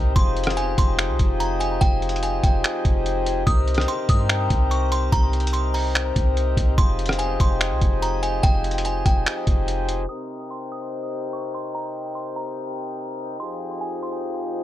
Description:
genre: hip hop, atmospheric cloud-rap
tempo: 145 BPM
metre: 4/4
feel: half-time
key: F minor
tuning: A4 = 440 Hz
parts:
  - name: pedal harmonium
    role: sustained chords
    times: 0.0-14.6 s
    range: F2 to Bb4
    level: -26 LUFS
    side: left 2 dB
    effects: stereo widening, sidechain pumping
  - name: soft 808-style bass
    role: bass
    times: 0.0-10.1 s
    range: F1 to G2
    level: -24 LUFS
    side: equal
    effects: none
  - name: delicate synth tine bell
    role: melody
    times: 0.2-14.6 s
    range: G5 to Eb6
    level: -29 LUFS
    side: right 1 dB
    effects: chorus, tape echo
  - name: trip hop sampler-style drum kit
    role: drums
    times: 0.2-10.0 s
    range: finger snaps, hi-hat, kick drum, rim click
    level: -21 LUFS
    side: equal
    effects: none
room: digital ambience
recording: dry, gritty hardware recording, low-pass filter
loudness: -20 LUFS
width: side -13 dB against mid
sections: 0.0-10.1 A section; 10.1-14.6 B section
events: none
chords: 0.2 Fm9; 3.5 Cm7; 6.8 Fm9; 10.1 Cm7; 13.4 Fm9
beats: | 0.16 0.57 0.99 1.40 | 1.81 2.23 2.64 3.06 | 3.47 3.88 4.30 4.71 | 5.12 5.54 5.95 6.37 | 6.78 7.19 7.61 8.02 | 8.44 8.85 9.26 9.68 | 10.09 10.50 10.92 11.33 | 11.74 12.16 12.57 12.99 | 13.40 13.81 14.23

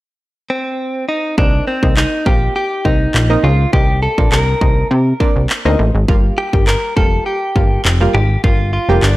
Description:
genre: dance-pop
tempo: 102 BPM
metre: 4/4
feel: straight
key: unclear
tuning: A4 = 440 Hz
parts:
  - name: direct-recorded clean electric guitar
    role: melody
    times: 0.5-9.2 s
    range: C4 to Bb4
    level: -18 LUFS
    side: equal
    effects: analog delay
  - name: analog pluck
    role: accompaniment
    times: 1.4-9.1 s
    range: G3 to G4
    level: -21 LUFS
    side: right 1 dB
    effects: chorus, sidechain pumping
  - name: plucky analog bass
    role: bass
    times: 1.4-9.2 s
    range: F1 to C3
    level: -15 LUFS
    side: equal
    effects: sidechain pumping
  - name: pop drum kit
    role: drums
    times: 1.4-9.2 s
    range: handclaps, kick drum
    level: -15 LUFS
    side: equal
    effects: none
room: light reverb, digital ambience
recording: dry, gritty hardware recording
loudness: -12 LUFS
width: side -18 dB against mid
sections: 0.0-1.4 A section; 1.4-9.2 B section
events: none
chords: 0.0 N.C.; 1.4 Cm7; 6.1 Gm7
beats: 0.20 0.79 | 1.38 1.97 2.56 3.14 | 3.73 4.32 4.91 5.50 | 6.08 6.67 7.26 7.85 | 8.44 9.03

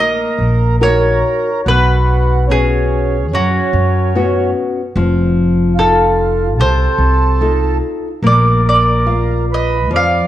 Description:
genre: fado-style ballad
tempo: 72 BPM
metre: 4/4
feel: rubato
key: unclear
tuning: A4 = 441 Hz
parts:
  - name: mandolin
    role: melody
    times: 0.0-10.3 s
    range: F#4 to F5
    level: -16 LUFS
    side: left 1 dB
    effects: none
  - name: mellow accordion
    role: second line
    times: 0.0-10.3 s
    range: C#4 to D5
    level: -20 LUFS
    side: right 6 dB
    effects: none
  - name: nylon-string guitar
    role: accompaniment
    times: 0.0-10.3 s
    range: B2 to F5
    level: -18 LUFS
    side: left 2 dB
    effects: none
  - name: upright bass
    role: bass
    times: 0.0-10.2 s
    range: F1 to F#2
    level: -15 LUFS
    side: equal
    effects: none
room: moderate recital hall reverb, RT60 1.4 s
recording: dark, warm production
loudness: -11 LUFS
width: side -12 dB against mid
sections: 0.0-10.3 A section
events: none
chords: 0.0 Ebm; 1.7 Bsus2; 4.9 F7; 8.2 Bb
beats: 0.81 | 1.66 2.49 3.31 4.13 | 4.95 5.76 6.58 7.40 | 8.23 9.07 9.91

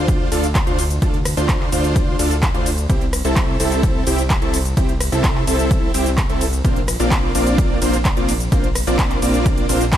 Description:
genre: EDM, festival progressive house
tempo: 128 BPM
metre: 4/4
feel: straight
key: unclear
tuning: A4 = 441 Hz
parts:
  - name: big supersaw lead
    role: riff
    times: 0.0-9.8 s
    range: Bb3 to D5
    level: -20 LUFS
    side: equal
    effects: sidechain pumping, dub echo
  - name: fat analog bass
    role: bass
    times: 0.0-10.0 s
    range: Bb1 to D2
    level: -22 LUFS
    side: equal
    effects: sidechain pumping
  - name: big-room dance drum kit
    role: drums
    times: 0.1-10.0 s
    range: handclaps, hi-hat, ride cymbal, rim click, shaker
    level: -24 LUFS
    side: equal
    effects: overdrive
  - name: electronic kick drum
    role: drums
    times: 0.1-10.0 s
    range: none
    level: -19 LUFS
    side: equal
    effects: overdrive
room: digital ambience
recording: none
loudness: -15 LUFS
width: side -11 dB against mid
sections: 0.0-10.0 A section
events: none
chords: 0.0 Dm; 2.9 C; 6.6 Bbadd9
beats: 0.08 0.55 | 1.02 1.49 1.96 2.43 | 2.90 3.36 3.83 4.30 | 4.77 5.24 5.71 6.18 | 6.65 7.11 7.58 8.05 | 8.52 8.99 9.46 9.93

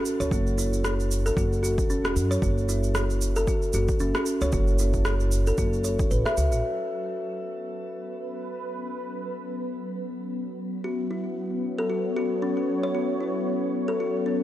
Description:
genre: organic downtempo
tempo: 114 BPM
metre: 4/4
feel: swing 56% on 16ths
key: unclear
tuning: A4 = 444 Hz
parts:
  - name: electronic shaker and rim click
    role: drums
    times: 0.1-6.6 s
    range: none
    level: -32 LUFS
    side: right 1 dB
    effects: none
  - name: kalimba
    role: arpeggios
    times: 0.2-6.6, 10.8-14.4 s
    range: C#4 to E5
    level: -28 LUFS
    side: equal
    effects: tape echo, shimmer reverb
  - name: upright bass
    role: bass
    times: 0.2-6.6 s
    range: E1 to F#2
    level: -25 LUFS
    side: equal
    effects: sidechain pumping
  - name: electronic kick drum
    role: drums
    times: 0.3-6.1 s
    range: none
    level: -27 LUFS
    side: equal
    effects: overdrive
  - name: warm analog pad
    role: sustained chords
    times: 6.6-14.4 s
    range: F#3 to C#5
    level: -30 LUFS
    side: left 1 dB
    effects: chorus, sidechain pumping, shimmer reverb
room: light reverb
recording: none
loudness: -24 LUFS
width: side -13 dB against mid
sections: 0.0-6.6 A section; 6.6-14.4 B section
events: none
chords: 0.0 Bsus2 (rootless); 6.6 Bsus2/F#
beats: | 0.32 0.85 1.37 1.90 | 2.43 2.95 3.48 4.00 | 4.53 5.06 5.58 6.11 | 6.64 7.16 7.69 8.21 | 8.74 9.27 9.79 10.32 | 10.85 11.37 11.90 12.43 | 12.95 13.48 14.01

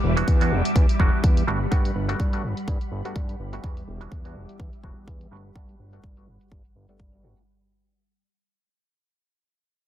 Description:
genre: filtered disco house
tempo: 125 BPM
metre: 4/4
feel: swing 56% on 16ths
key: unclear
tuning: A4 = 441 Hz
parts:
  - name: string machine, full ensemble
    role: sustained chords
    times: 0.0-7.5 s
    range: G3 to D6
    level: -31 LUFS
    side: right 1 dB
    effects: ensemble chorus, sidechain pumping, low-pass filter
  - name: fat analog bass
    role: bass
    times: 0.0-7.3 s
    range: E1 to G2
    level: -28 LUFS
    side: equal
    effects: tube saturation, sidechain pumping, low-pass filter
  - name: muted clav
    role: accompaniment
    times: 0.2-7.4 s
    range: E3 to A4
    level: -30 LUFS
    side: right 2 dB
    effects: phaser, sidechain pumping, low-pass filter
  - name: electronic hi-hat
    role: drums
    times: 0.2-7.5 s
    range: none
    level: -41 LUFS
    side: left 1 dB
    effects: sidechain pumping on hats, low-pass filter on hats, sidechain pumping on perc, low-pass filter on perc, low-pass filter on snare
  - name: electronic kick drum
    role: drums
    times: 0.3-7.1 s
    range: none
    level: -22 LUFS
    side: equal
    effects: none
room: digital ambience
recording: dense, heavily limited modern master, faint mains hum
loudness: -20 LUFS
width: side -11 dB against mid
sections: 0.0-7.5 A section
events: fade-out 0.0-7.5; filter sweep 0.0-7.5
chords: 0.0 Em7; 1.5 Gmaj7; 3.6 Em7; 5.3 Gmaj7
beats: 0.28 0.76 1.24 | 1.72 2.20 2.68 3.16 | 3.64 4.12 4.60 5.08 | 5.56 6.04 6.52 7.00

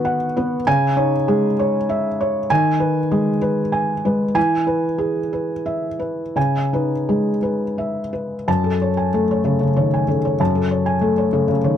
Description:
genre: neoclassical minimalist piano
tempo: 55-66 BPM (dotted quarters)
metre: 6/8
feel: rubato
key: unclear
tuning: A4 = 437 Hz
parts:
  - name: felt-muted upright piano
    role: solo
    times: 0.0-11.8 s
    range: F#2 to A5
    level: -17 LUFS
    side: equal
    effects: none
room: light reverb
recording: dry, close 1970s-style studio recording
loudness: -17 LUFS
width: side -9 dB against mid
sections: 0.0-8.5 A section; 8.5-11.8 B section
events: none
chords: 0.0 B/D#; 0.7 C#m; 2.5 G#m/D#; 4.4 E; 6.4 C#m7; 8.5 F#madd9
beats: | 0.66 1.58 | 2.50 3.42 | 4.36 5.32 | 6.36 7.42 | 8.47 9.45 | 10.40 11.33

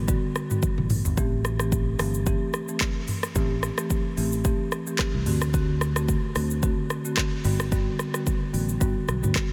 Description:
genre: afrobeats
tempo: 110 BPM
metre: 4/4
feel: swing 55% on 16ths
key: unclear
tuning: A4 = 442 Hz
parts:
  - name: fingered electric bass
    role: bass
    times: 0.0-9.5 s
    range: G1 to D2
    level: -29 LUFS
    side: equal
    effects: none
  - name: marimba with medium mallets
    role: accompaniment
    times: 0.1-9.4 s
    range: D3 to G4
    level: -31 LUFS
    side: equal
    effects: none
  - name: afro-pop drum kit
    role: drums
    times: 0.1-9.5 s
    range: handclaps, hi-hat, kick drum, rim click, shaker, toms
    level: -29 LUFS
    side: equal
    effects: none
room: light reverb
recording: none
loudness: -25 LUFS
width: mono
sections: 0.0-9.5 A section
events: drum fill 0.6-1.2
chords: 0.0 Gmaj7; 1.2 Am7; 5.3 D7; 7.4 Gmaj7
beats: 0.08 0.63 | 1.18 1.72 2.27 2.81 | 3.36 3.90 4.45 4.99 | 5.54 6.08 6.63 7.17 | 7.72 8.27 8.81 9.36

